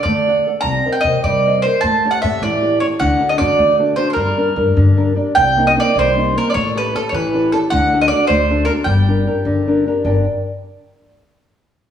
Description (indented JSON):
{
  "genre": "italian folk, Italian serenade",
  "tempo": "102 BPM (dotted quarters)",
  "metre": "6/8",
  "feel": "straight",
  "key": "G harmonic minor",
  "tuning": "A4 = 439 Hz",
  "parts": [
    { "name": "mandolin", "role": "melody", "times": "0.0-9.6 s", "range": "A4 to Bb5", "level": "-16 LUFS", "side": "right 2 dB", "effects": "none" },
    { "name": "nylon-string guitar", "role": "accompaniment", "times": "0.0-10.2 s", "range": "G2 to G5", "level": "-18 LUFS", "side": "left 1 dB", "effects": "none" },
    { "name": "upright bass", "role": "bass", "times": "0.1-10.2 s", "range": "G1 to D3", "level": "-20 LUFS", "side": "left 1 dB", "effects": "none" }
  ],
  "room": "wet stone room reverb, RT60 1.3 s",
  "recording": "band playing live in one room, small room ambience",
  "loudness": "-13 LUFS",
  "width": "side -9 dB against mid",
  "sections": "0.0-5.4 A section; 5.4-10.1 B section; 10.1-11.2 C section",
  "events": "nylon-string guitar fill 4.8-5.4",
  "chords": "0.0 D; 0.7 Cm7; 1.8 A7; 3.0 D; 4.2 Gm; 5.4 Cm7; 6.5 A7; 7.7 D; 8.9 Gm",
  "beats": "0.06 | 0.65 1.24 | 1.83 2.42 | 3.01 3.59 | 4.17 4.76 | 5.36 5.96 | 6.55 7.13 | 7.71 8.29 | 8.87 9.46 | 10.05"
}